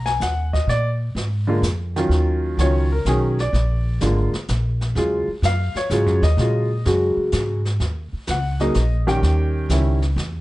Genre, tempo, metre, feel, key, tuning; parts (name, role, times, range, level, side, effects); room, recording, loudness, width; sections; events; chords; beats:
jazz piano trio; 127 BPM; 3/4; swing 68% on 8ths; Eb minor; A4 = 438 Hz
clear concert grand piano; melody; 0.0-10.0 s; Db3 to Ab5; -22 LUFS; equal
upright bass; bass; 0.0-10.4 s; Ab1 to Bb2; -20 LUFS; equal
jazz brush drum kit; drums; 0.1-10.4 s; brushed snare drum, hi-hat, kick drum, snare drum; -30 LUFS; right 1 dB
light reverb; dark, warm production, nothing above 10.7 kHz; -18 LUFS; side -18 dB against mid
0.0-7.8 A section; 7.8-10.4 A section
grand piano solo 0.0-10.4
0.0 Abm; 0.7 Bb7; 2.1 Ebm9; 3.5 Bb7; 5.0 Ebm11; 7.8 Ebm7; 9.2 Eb7b9
0.22 | 0.69 1.17 1.64 | 2.12 2.59 3.07 | 3.54 4.01 4.49 | 4.96 5.44 5.91 | 6.38 6.86 7.33 | 7.81 8.28 8.75 | 9.23 9.70 10.18